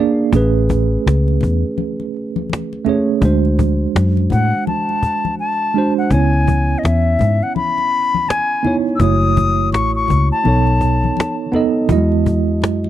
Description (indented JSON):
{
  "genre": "R&B, neo-soul",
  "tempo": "83 BPM",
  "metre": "4/4",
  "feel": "swing 63% on 16ths",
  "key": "unclear",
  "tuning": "A4 = 440 Hz",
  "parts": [
    { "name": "tine electric piano", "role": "accompaniment", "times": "0.0-12.9 s", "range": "F#3 to D#5", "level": "-18 LUFS", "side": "right 5 dB", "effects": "medium stereo tremolo" },
    { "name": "cajon", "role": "drums", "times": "0.2-12.9 s", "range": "none", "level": "-20 LUFS", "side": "left 1 dB", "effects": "none" },
    { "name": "vintage muted fingered electric bass", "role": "bass", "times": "0.3-12.9 s", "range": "F#1 to A2", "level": "-16 LUFS", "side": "left 1 dB", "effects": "none" },
    { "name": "congas", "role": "percussion", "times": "0.7-12.9 s", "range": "none", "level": "-26 LUFS", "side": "left 8 dB", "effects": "none" },
    { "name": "concert flute", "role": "melody", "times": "4.3-11.4 s", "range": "D#5 to E6", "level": "-19 LUFS", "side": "left 4 dB", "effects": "tape echo" }
  ],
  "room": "little or no reverb",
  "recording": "dry, close 1970s-style studio recording",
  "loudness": "-14 LUFS",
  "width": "side -12 dB against mid",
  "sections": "0.0-12.9 A section",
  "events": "silent gap 5.4-6.1",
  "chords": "0.3 Amaj9; 3.2 D7#11; 6.1 C#m9; 9.0 F#m7; 10.4 B9; 11.9 Emaj9"
}